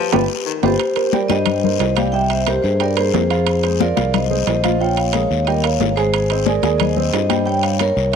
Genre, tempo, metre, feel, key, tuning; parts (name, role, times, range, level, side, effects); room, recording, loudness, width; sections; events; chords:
latin, salsa; 180 BPM; 4/4; straight; C minor; A4 = 439 Hz
vibraphone with hard mallets; melody; 0.0-8.2 s; G4 to G5; -19 LUFS; left 2 dB
breathy baritone saxophone; second line; 0.0-0.6 s; D#3 to F3; -28 LUFS; left 10 dB
dark upright piano; accompaniment; 0.1-8.1 s; F3 to Ab5; -23 LUFS; right 10 dB
fingered electric bass; bass; 0.1-8.2 s; G1 to G2; -20 LUFS; equal
congas; percussion; 0.1-8.0 s; -23 LUFS; left 14 dB
guiro; percussion; 0.1-8.1 s; -31 LUFS; left 14 dB
timbales; percussion; 0.1-8.2 s; -25 LUFS; right 13 dB
moderate plate reverb, RT60 3.4 s; 1960s-style stereo with parts hard left and right; -15 LUFS; side -7 dB against mid
0.8-8.2 A section
band accent 0.0-0.8
0.0 Gaug7; 0.8 Cm9; 2.1 C7; 3.5 Fm7; 4.8 Bbm7; 5.5 Eb9; 6.1 Abmaj9; 7.5 Gdim